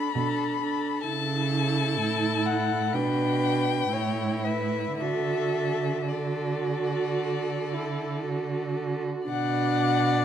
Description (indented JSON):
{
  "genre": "classical, slow romantic movement for string quartet",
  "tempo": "54-67 BPM",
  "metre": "4/4",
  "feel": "rubato",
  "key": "D major",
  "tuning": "A4 = 439 Hz",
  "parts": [
    { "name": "warm violin", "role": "melody", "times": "0.0-10.2 s", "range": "D5 to B5", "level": "-30 LUFS", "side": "left 8 dB", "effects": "none" },
    { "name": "warm violin", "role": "second line", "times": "0.0-10.2 s", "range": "A4 to D5", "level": "-33 LUFS", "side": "left 3 dB", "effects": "none" },
    { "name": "warm viola", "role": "accompaniment", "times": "0.0-10.2 s", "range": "D4 to F#4", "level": "-30 LUFS", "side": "right 3 dB", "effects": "none" },
    { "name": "rich cello", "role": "bass", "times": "0.0-10.2 s", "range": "A2 to D3", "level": "-29 LUFS", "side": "right 4 dB", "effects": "none" }
  ],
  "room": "moderate concert hall reverb, RT60 2.2 s",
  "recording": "close, detailed microphones",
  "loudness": "-24 LUFS",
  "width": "side -9 dB against mid",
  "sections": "0.0-9.3 A section",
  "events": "none",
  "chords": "0.0 Bm7; 1.1 A/C#; 2.9 G/B; 3.9 A7; 5.0 D; 9.3 Bm",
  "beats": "0.16 | 1.06 1.98 2.94 3.93 | 5.00 6.09 7.17 8.25 | 9.29"
}